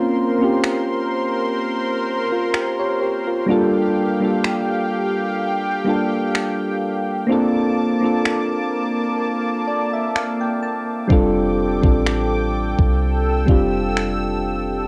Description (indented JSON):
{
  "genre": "contemporary R&B",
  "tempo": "63 BPM",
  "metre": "4/4",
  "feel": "swing 54% on 16ths",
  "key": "unclear",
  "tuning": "A4 = 440 Hz",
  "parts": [
    { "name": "soft electric-piano-like synth keys", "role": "accompaniment", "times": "0.0-14.9 s", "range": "G3 to A5", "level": "-22 LUFS", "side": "equal", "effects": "chorus, cassette tape, plate reverb" },
    { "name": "warm analog pad", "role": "sustained chords", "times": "0.0-14.9 s", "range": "Bb3 to E6", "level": "-27 LUFS", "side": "equal", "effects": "chorus, tremolo, sidechain pumping, cassette tape, plate reverb" },
    { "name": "smooth R&B drum kit", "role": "drums", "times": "0.6-14.2 s", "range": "finger snaps, kick drum", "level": "-21 LUFS", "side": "equal", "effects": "cassette tape" },
    { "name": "soft 808-style bass", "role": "bass", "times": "11.1-14.9 s", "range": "F1 to C2", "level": "-26 LUFS", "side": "equal", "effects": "none" }
  ],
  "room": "moderate studio reverb, RT60 0.6 s",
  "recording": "home recording on cassette",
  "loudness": "-20 LUFS",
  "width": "mono",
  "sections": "0.0-14.9 A section",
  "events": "break 0.0-11.1; kick muted 7.3-11.1; synth keys fill 9.2-11.1",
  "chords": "0.0 Bbmadd9; 3.5 Gm7; 7.3 Bbmaj7; 11.1 F69"
}